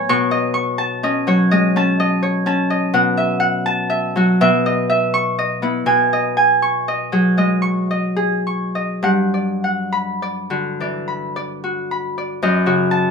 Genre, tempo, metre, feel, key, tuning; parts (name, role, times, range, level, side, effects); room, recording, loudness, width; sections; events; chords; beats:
classical, solo harp piece; 33-43 BPM (dotted quarters); 6/8; rubato; A4 = 436 Hz
Celtic harp; solo; 0.0-13.1 s; F#2 to C#6; -16 LUFS; equal
light reverb; minimal, uncompressed stereo recording; -16 LUFS; side -5 dB against mid
0.0-12.4 A section
0.1 B9; 2.9 F#m7/B; 4.4 C#m9/B; 5.9 B69; 9.0 Gmaj7; 12.4 F#m6
| 0.08 1.50 | 2.93 4.40 | 5.89 7.40 | 9.04 10.81 | 12.42